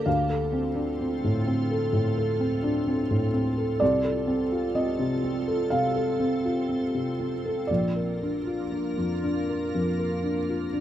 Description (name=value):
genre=neoclassical piano and strings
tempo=58-65 BPM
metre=4/4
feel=rubato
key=unclear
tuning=A4 = 440 Hz
part: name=felt-muted upright piano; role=accompaniment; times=0.0-10.8 s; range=Bb1 to F5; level=-24 LUFS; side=equal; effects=none
part: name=soft additive organ-like pad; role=sustained chords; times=0.0-10.8 s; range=Bb3 to Bb4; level=-34 LUFS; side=right 4 dB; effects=ensemble chorus, built-in reverb
room=small room ambience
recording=rough home demo mix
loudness=-24 LUFS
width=side -11 dB against mid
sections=0.0-10.8 A section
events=none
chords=0.1 Dm7; 3.8 F/C; 7.7 Bb